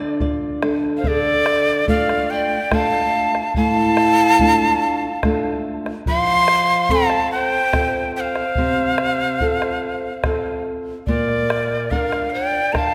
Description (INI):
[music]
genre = andean folk, Andean ensemble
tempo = 72 BPM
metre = 3/4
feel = straight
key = D minor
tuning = A4 = 440 Hz
[part]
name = breathy bright quena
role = melody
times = 0.0-12.9 s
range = D5 to C6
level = -22 LUFS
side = equal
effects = tape echo
[part]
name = breathy hollow pan flute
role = second line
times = 0.0-12.9 s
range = A4 to F5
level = -26 LUFS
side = equal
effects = none
[part]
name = flamenco guitar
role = accompaniment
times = 0.0-12.9 s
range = A2 to D5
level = -24 LUFS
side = equal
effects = none
[part]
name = bombo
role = percussion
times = 0.0-12.9 s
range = none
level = -29 LUFS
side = equal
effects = none
[sound]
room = wet concert hall reverb, RT60 1.8 s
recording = none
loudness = -19 LUFS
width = mono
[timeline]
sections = 0.0-1.0 A section; 1.0-12.9 B section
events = nylon-string guitar fill 0.0-1.0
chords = 0.0 Dm; 6.1 F; 11.1 Bb